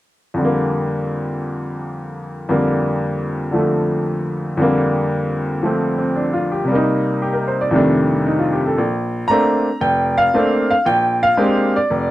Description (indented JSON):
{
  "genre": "solo jazz",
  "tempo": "115 BPM",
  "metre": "4/4",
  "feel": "swing 69% on 8ths",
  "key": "Bb major",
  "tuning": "A4 = 440 Hz",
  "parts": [
    { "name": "bright upright piano", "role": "solo", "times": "0.3-12.1 s", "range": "F1 to Bb5", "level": "-16 LUFS", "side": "equal", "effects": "none" }
  ],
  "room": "light reverb",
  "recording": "dry, close 1970s-style studio recording",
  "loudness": "-16 LUFS",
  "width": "side -15 dB against mid",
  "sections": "0.4-8.8 A section; 8.8-12.1 B section",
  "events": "none",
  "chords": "0.4 Bb6/F; 6.7 Cm7; 7.7 F13; 8.8 Bbmaj9; 10.9 Bb13"
}